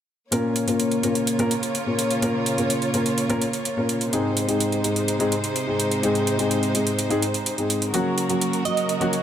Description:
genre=EDM, festival progressive house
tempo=126 BPM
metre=4/4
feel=straight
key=Bb minor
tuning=A4 = 440 Hz
part: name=dark concert grand piano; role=accompaniment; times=0.3-9.1 s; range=Ab2 to Bb4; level=-22 LUFS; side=left 1 dB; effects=tape echo
part: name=warm studio string section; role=sustained chords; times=0.3-9.2 s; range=C3 to Db5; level=-27 LUFS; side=right 1 dB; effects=none
part: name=electronic hi-hat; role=drums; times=0.3-9.2 s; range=none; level=-27 LUFS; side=right 2 dB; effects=overdrive
part: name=glassy wavetable pluck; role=melody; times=8.7-9.2 s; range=Eb5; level=-24 LUFS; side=right 6 dB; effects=chorus, tape echo
room=moderate lush hall reverb, RT60 2.2 s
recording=none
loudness=-20 LUFS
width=side -10 dB against mid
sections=0.3-9.2 A section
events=none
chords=0.3 Bbm; 4.1 Ab; 7.9 Gb

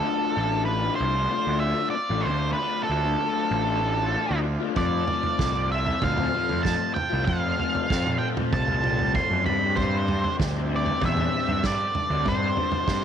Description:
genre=psychedelic rock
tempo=96 BPM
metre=4/4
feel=straight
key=unclear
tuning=A4 = 440 Hz
part: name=octave-fuzz lead guitar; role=melody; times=0.0-13.0 s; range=A4 to C6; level=-26 LUFS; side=right 2 dB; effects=distortion, slapback echo
part: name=overdriven combo organ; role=sustained chords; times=0.0-13.0 s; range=C4 to D5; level=-38 LUFS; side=right 13 dB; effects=none
part: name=raw garage guitar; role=riff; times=0.0-13.0 s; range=G2 to F4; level=-29 LUFS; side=left 14 dB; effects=overdrive, rotary speaker
part: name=fuzz picked electric bass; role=bass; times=0.4-13.0 s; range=A1 to G2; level=-27 LUFS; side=right 1 dB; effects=overdrive
part: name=vintage drum kit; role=drums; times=4.8-13.0 s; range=kick drum, snare drum, toms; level=-29 LUFS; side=right 3 dB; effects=none
room=light reverb, studio reverb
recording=1960s-style stereo with parts hard left and right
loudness=-22 LUFS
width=side -8 dB against mid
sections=0.0-13.0 A section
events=none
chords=0.0 Dm7; 4.8 F; 9.5 Gsus4

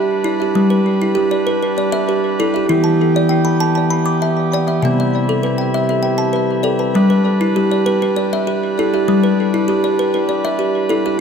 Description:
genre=world meditative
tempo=197 BPM (eighths)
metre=7/8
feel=straight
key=G major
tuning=A4 = 435 Hz
part: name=pipe organ, cornet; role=sustained chords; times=0.0-11.2 s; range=C3 to B4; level=-19 LUFS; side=right 1 dB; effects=none
part: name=kalimba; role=arpeggios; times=0.0-11.2 s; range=C3 to D6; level=-15 LUFS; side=left 1 dB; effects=ping-pong delay
room=wet church reverb, RT60 3.2 s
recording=dark, warm production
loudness=-14 LUFS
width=side -6 dB against mid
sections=0.0-11.2 A section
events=none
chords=0.0 G; 2.7 Em; 4.8 C; 7.0 G

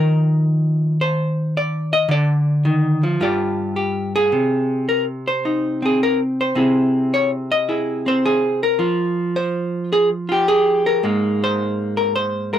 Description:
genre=solo jazz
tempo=107 BPM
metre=4/4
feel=swing 69% on 8ths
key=C minor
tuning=A4 = 440 Hz
part: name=vintage hollow-body jazz guitar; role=solo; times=0.0-12.6 s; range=G2 to Eb5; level=-16 LUFS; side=equal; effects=none
room=moderate booth ambience, RT60 0.2 s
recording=dry, close 1970s-style studio recording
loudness=-16 LUFS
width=side -10 dB against mid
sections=0.0-4.3 A section; 4.3-12.6 B section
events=hollow-body jazz guitar solo 0.0-4.3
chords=0.0 Eb5; 2.1 Dm; 3.2 G5; 4.3 Cm; 6.5 Caug; 8.8 N.C.; 11.0 Abadd9

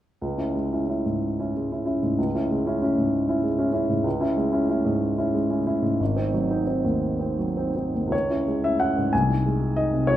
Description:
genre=classical, romantic character piece for solo piano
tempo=53-65 BPM (dotted quarters)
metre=6/8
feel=rubato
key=C# minor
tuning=A4 = 442 Hz
part: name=warm baby grand piano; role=solo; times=0.2-10.2 s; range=G#1 to G#5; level=-21 LUFS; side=equal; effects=none
room=wet recital hall reverb, RT60 1.4 s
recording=minimal, uncompressed stereo recording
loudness=-22 LUFS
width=side -12 dB against mid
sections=0.2-8.1 A section; 8.1-10.2 B section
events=none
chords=0.2 C#m; 6.0 G#7; 8.1 C#m; 9.1 G#/B#

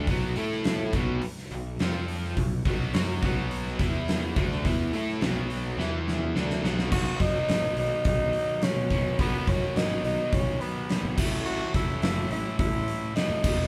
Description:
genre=classic rock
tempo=106 BPM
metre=4/4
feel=straight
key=B mixolydian from 6.9 s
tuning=A4 = 438 Hz
part: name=distorted electric guitar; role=riff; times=0.0-13.7 s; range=A2 to A4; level=-38 LUFS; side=equal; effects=distortion
part: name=distorted electric guitar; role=riff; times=0.0-13.7 s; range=E2 to A4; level=-37 LUFS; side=equal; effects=distortion
part: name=raw garage guitar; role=riff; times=0.0-6.9 s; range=B2 to A4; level=-37 LUFS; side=equal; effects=overdrive
part: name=fuzz picked electric bass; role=bass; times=0.0-13.7 s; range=E1 to B2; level=-35 LUFS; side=equal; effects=overdrive
part: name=big rock drum kit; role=drums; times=0.1-13.6 s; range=crash cymbal, hi-hat, kick drum, snare drum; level=-31 LUFS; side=equal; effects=none
part: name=growling tenor saxophone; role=melody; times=6.9-13.7 s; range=B3 to F#4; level=-32 LUFS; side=equal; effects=none
room=moderate studio reverb, RT60 0.6 s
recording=band playing live in one room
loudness=-27 LUFS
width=mono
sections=0.0-6.9 A section; 6.9-13.7 B section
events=drum fill 5.8-6.9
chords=0.4 A5; 0.9 B5; 1.8 F5; 2.4 B5; 3.8 E5; 4.4 B5; 5.8 E5; 6.4 B5; 6.9 B; 11.2 A

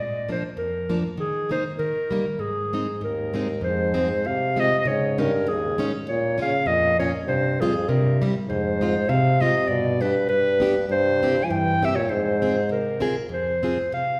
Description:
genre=alpine folk, alpine dance band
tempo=99 BPM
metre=2/4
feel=swing 55% on 8ths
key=Ab major, F minor from 3.6 s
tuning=A4 = 439 Hz
part: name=warm clarinet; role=melody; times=0.0-14.2 s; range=Ab4 to Ab5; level=-26 LUFS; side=equal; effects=none
part: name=picked plugged-in steel-string acoustic guitar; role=accompaniment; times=0.0-14.2 s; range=F2 to Ab4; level=-28 LUFS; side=equal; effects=none
part: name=mellow euphonium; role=second line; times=3.0-13.0 s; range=Eb2 to F3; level=-28 LUFS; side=equal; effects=none
room=wet recital hall reverb, RT60 1.6 s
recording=heard from further back in the room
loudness=-23 LUFS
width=mono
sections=0.0-3.6 A section; 3.6-13.3 B section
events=none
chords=0.0 Bb; 1.2 Ebsus4; 1.8 Eb; 2.4 Ab; 3.6 Fm; 4.9 Dbsus2; 6.1 Bbm; 7.3 Csus4; 7.9 C; 8.5 Fm; 9.7 G; 10.9 C; 12.1 Fm

